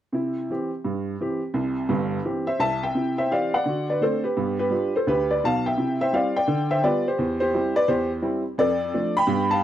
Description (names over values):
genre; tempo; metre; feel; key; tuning
jazz, stride piano; 171 BPM; 4/4; swing 64% on 8ths; C major; A4 = 442 Hz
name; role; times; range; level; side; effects
clear upright piano; solo; 0.1-9.6 s; G1 to B5; -21 LUFS; equal; slapback echo
room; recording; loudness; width
small room reverb; dry, close 1970s-style studio recording; -21 LUFS; side -11 dB against mid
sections
0.1-3.0 A section; 3.0-9.6 B section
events
none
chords
0.1 C; 3.7 D7; 4.4 G7; 5.8 C; 6.5 G7/D; 7.2 C/E; 8.6 Dm/F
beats
| 0.14 0.49 0.84 1.20 | 1.55 1.90 2.25 2.60 | 2.96 3.31 3.66 4.01 | 4.36 4.71 5.07 5.42 | 5.77 6.12 6.47 6.83 | 7.18 7.53 7.88 8.23 | 8.58 8.94 9.29